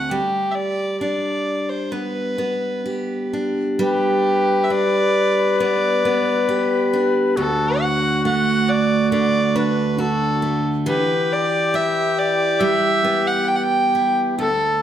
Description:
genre	celtic folk, Celtic slow air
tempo	68 BPM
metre	4/4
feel	rubato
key	G major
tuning	A4 = 440 Hz
part	dark fiddle	melody	0.0-14.8 s	G4 to G5	-21 LUFS	right 1 dB	none
part	picked steel-string acoustic guitar	accompaniment	0.0-14.8 s	D2 to G4	-21 LUFS	right 2 dB	none
part	bright reedy baroque flute	second line	3.8-14.8 s	F#4 to B4	-22 LUFS	left 5 dB	none
room	wet recital hall reverb, RT60 1.3 s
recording	none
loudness	-17 LUFS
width	side -10 dB against mid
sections	0.0-3.8 A section; 3.8-14.8 A section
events	none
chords	0.1 G; 7.4 D; 10.9 Em

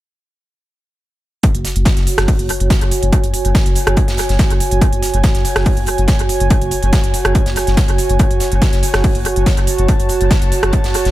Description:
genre	driving peak-time techno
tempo	142 BPM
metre	4/4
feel	straight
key	F# minor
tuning	A4 = 440 Hz
part	electronic kick drum	drums	1.4-10.8 s	none	-15 LUFS	equal	none
part	gated 80s drum kit	drums	1.4-11.1 s	hi-hat, snare drum	-27 LUFS	right 1 dB	sidechain pumping on hats, high-pass filter on hats, high-pass filter on snare, high-pass filter on room
part	techno drum kit	drums	1.4-11.1 s	hi-hat, rim click	-22 LUFS	right 1 dB	sidechain pumping on hats, dub echo
part	airy breathy pad	texture	1.4-11.1 s	F#4 to A5	-20 LUFS	right 3 dB	chorus, sidechain pumping
part	saturated sub bass	bass	1.5-11.1 s	F#1	-18 LUFS	equal	tube saturation, sidechain pumping, low-pass filter
room	little or no reverb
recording	echo-heavy mix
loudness	-12 LUFS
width	side -15 dB against mid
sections	1.4-11.1 A section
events	none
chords	1.4 F#5

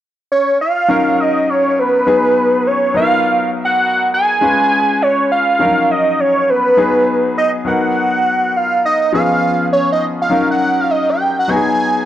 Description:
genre	R&B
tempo	102 BPM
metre	4/4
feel	swing 65% on 16ths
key	Eb minor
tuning	A4 = 440 Hz
part	fat analog lead	melody	0.3-12.1 s	Cb5 to Ab5	-13 LUFS	right 1 dB	none
part	clear concert grand piano	accompaniment	0.9-12.1 s	F3 to Cb5	-18 LUFS	left 3 dB	none
room	moderate echo chamber reverb, RT60 1.3 s, small room ambience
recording	dark, warm production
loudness	-12 LUFS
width	side -12 dB against mid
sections	0.9-10.3 A section; 10.3-12.1 B section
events	none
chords	0.0 N.C.; 0.9 Ebm7; 2.1 Abm7; 2.9 Bmaj7; 4.4 Db7; 5.6 Ebm7; 6.8 Abm7; 7.7 Bmaj7; 9.1 Db7; 10.3 Ebm7; 11.5 Abm7

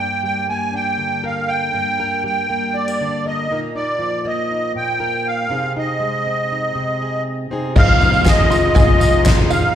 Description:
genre	indie folk with a building arrangement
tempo	120 BPM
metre	4/4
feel	straight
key	unclear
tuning	A4 = 440 Hz
part	musette accordion	melody	0.0-9.8 s	D5 to Ab5	-19 LUFS	right 2 dB	slapback echo
part	fingerpicked plugged-in steel-string acoustic guitar	accompaniment	0.0-7.8 s	G2 to Bb4	-25 LUFS	left 1 dB	slapback echo
part	warm French horn	second line	7.7-9.8 s	F4	-23 LUFS	left 4 dB	slapback echo
part	clear upright piano	accompaniment	7.7-9.8 s	F1 to F5	-27 LUFS	right 2 dB	none
part	warm chamber string section	sustained chords	7.7-9.8 s	C3 to Eb4	-29 LUFS	equal	none
part	picked old ladder-braced acoustic guitar	accompaniment	7.8-9.7 s	F2 to F4	-26 LUFS	left 7 dB	none
part	open-back banjo	arpeggios	7.8-9.8 s	Eb5 to C6	-26 LUFS	right 6 dB	slapback echo
part	fingered electric bass	bass	7.8-9.6 s	F1	-19 LUFS	equal	none
part	soft-mallet drum kit	drums	7.8-9.4 s	crash cymbal, kick drum, snare drum, toms	-14 LUFS	left 1 dB	none
part	tambourine	percussion	7.8-9.6 s	none	-33 LUFS	left 3 dB	none
part	group handclap	percussion	8.3-9.4 s	none	-28 LUFS	left 2 dB	slapback echo
room	light reverb, studio reverb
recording	live gig heard through the venue's PA, recital hall reverb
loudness	-16 LUFS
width	side -10 dB against mid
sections	0.0-7.8 A section; 7.8-9.8 B section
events	none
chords	0.0 Gm; 3.5 Bbsus4; 5.5 Ab/C; 7.8 Fm7

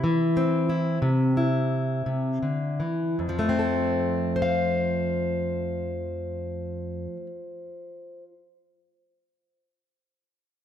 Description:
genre	folk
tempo	51-62 BPM (dotted quarters)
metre	6/8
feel	straight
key	F major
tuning	A4 = 440 Hz
part	fingerpicked plugged-in steel-string acoustic guitar	accompaniment	0.0-8.3 s	F2 to F5	-24 LUFS	left 1 dB	none
room	wet plate reverb, RT60 2.3 s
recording	bright 1980s-style digital production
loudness	-24 LUFS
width	side -9 dB against mid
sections	0.0-3.2 A section; 3.2-7.9 B section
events	slowing down 0.0-3.2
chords	0.0 C; 3.2 F

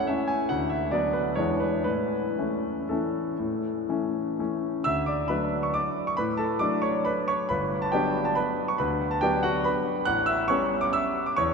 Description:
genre	classical, piano waltz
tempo	115-150 BPM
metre	3/4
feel	rubato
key	A major, D major from 4.9 s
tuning	A4 = 441 Hz
part	bright concert grand piano	solo	0.0-11.5 s	G1 to F#6	-24 LUFS	equal	none
room	wet cathedral reverb, RT60 6.0 s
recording	in a vast, echoing space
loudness	-24 LUFS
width	side -4 dB against mid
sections	0.0-4.9 A section; 4.9-11.5 B section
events	none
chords	0.0 A; 0.5 Bm/D; 1.4 E7; 1.9 A; 4.9 D; 7.5 Gmaj7; 10.1 A13

